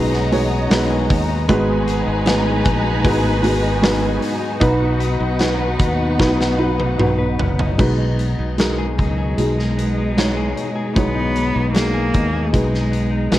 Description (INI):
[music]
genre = pop ballad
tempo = 76 BPM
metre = 4/4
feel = straight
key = B major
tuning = A4 = 440 Hz
[part]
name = dark studio violin section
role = second line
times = 0.0-7.7 s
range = D#4 to A#5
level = -26 LUFS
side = left 2 dB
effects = none
[part]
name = felt-muted upright piano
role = accompaniment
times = 0.0-13.4 s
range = G#2 to C#5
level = -21 LUFS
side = right 1 dB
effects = none
[part]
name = warm studio string section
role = sustained chords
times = 0.0-13.4 s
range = B2 to A#5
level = -26 LUFS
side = equal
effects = none
[part]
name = direct-recorded clean electric guitar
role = arpeggios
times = 0.0-13.4 s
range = G#2 to B4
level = -27 LUFS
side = left 6 dB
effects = none
[part]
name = fingered electric bass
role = bass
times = 0.0-13.4 s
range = F#1 to D#2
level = -21 LUFS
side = equal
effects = none
[part]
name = huge arena drum kit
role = drums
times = 0.1-13.4 s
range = crash cymbal, hi-hat, kick drum, snare drum, toms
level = -22 LUFS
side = equal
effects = none
[part]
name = clear cello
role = melody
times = 9.0-13.4 s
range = F#3 to B3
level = -22 LUFS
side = equal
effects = none
[sound]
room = light reverb, studio reverb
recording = worn, warbling old tape, cassette tape, warbly pitch drift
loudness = -15 LUFS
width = side -14 dB against mid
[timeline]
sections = 0.0-7.8 A section; 7.8-13.4 B section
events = drum fill 6.2-7.8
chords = 0.0 B6; 1.5 G#m7; 4.6 B; 7.8 B6